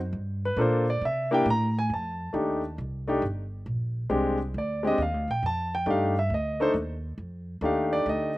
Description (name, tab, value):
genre	jazz piano trio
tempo	136 BPM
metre	4/4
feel	swing 67% on 8ths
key	F mixolydian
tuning	A4 = 441 Hz
part	upright bass	bass	0.0-8.4 s	G1 to C3	-30 LUFS	equal	none
part	warm concert grand piano	melody	0.5-8.4 s	Ab3 to Bb5	-25 LUFS	equal	none
room	little or no reverb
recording	recorded outdoors, with no room sound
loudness	-25 LUFS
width	side -18 dB against mid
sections	0.0-1.9 A section; 1.9-8.4 A section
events	grand piano solo 0.0-8.4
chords	0.1 Gm7; 1.0 C13; 1.9 F13; 3.7 Bb13; 5.4 F13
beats	| 0.14 0.58 1.02 1.46 | 1.90 2.34 2.78 3.22 | 3.67 4.11 4.55 4.99 | 5.43 5.87 6.30 6.75 | 7.18 7.62 8.06